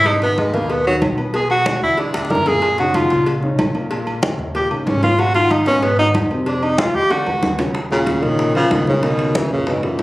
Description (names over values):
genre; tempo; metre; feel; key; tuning
Afro-Cuban jazz; 187 BPM; 4/4; straight; Eb minor; A4 = 435 Hz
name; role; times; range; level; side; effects
breathy tenor saxophone; melody; 0.0-10.0 s; Bb2 to Bb4; -17 LUFS; equal; none
warm upright piano; accompaniment; 0.0-10.0 s; Bb2 to D5; -23 LUFS; left 1 dB; none
upright bass; bass; 0.0-10.0 s; Ab1 to Ab2; -25 LUFS; equal; none
agogo bells and timbales; percussion; 0.1-10.0 s; none; -29 LUFS; right 2 dB; none
congas; percussion; 0.1-10.0 s; none; -23 LUFS; equal; none
cowbell and bongos; percussion; 0.1-10.0 s; none; -28 LUFS; left 2 dB; none
breathy baritone saxophone; second line; 7.9-10.0 s; Gb2 to Db3; -22 LUFS; equal; none
room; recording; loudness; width
moderate large studio reverb, RT60 0.9 s; recorded on a phone in the room, club reverb, compression; -15 LUFS; side -18 dB against mid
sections
0.0-7.8 A section; 7.8-10.0 B section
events
tenor saxophone solo 0.0-7.8; drum fill 2.1-2.6, 7.1-7.8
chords
0.1 Abm7; 1.3 Bm; 2.0 Esus2; 2.6 Gb6; 3.9 Bbdim; 4.5 Eb5; 5.2 Abm7; 6.5 F5; 7.1 E13; 7.8 Ebm7; 9.0 Dbm11